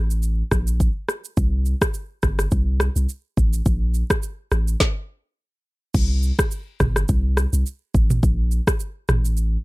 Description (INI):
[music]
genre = afrobeats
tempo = 105 BPM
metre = 4/4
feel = swing 55% on 16ths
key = unclear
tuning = A4 = 439 Hz
[part]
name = punchy sub bass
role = bass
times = 0.0-9.6 s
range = G1 to C2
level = -20 LUFS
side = equal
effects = none
[part]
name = afro-pop drum kit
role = drums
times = 0.1-9.5 s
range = crash cymbal, kick drum, rim click, shaker, snare drum, toms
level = -20 LUFS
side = equal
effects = none
[sound]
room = little or no reverb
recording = dark, warm production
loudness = -19 LUFS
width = side -21 dB against mid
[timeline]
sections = 0.0-5.9 A section; 5.9-9.6 B section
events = stop 4.8-5.9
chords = none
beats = 0.23 0.80 | 1.37 1.95 2.52 3.09 | 3.66 4.23 4.80 5.37 | 5.95 6.52 7.09 7.66 | 8.23 8.80 9.37